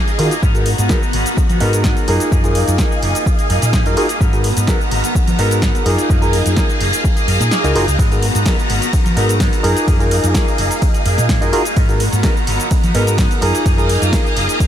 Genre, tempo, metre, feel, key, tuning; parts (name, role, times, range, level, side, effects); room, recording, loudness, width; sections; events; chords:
filtered disco house; 127 BPM; 4/4; straight; G# dorian; A4 = 436 Hz
bright reed electric piano; accompaniment; 0.0-14.7 s; B3 to A#4; -21 LUFS; equal; phaser, sidechain pumping
phased string machine; sustained chords; 0.0-14.7 s; B3 to A#5; -22 LUFS; equal; ensemble chorus, phaser, sidechain pumping
clean electric guitar; riff; 0.0-14.7 s; E#3 to A#4; -23 LUFS; equal; wide subtle chorus, sidechain pumping
punchy analog drum machine; drums; 0.1-14.7 s; hi-hat, ride cymbal, shaker, snare drum; -23 LUFS; equal; overdrive, sidechain pumping on cymbals, studio reverb, sidechain pumping on perc, sidechain pumping on hats
hollow-body short-scale fingered electric bass; bass; 0.2-14.5 s; F#1 to E#3; -18 LUFS; equal; sidechain pumping
electronic kick drum; drums; 0.4-14.7 s; -16 LUFS; equal; overdrive, studio reverb
light reverb, digital ambience; -13 LUFS; side -10 dB against mid
0.0-14.7 A section
kick drops out 7.5-8.0
0.4 G#m9; 2.1 F#maj13; 4.2 G#m9; 5.9 F#maj13; 8.0 G#m9; 9.6 F#maj13; 11.8 G#m9; 13.4 F#maj13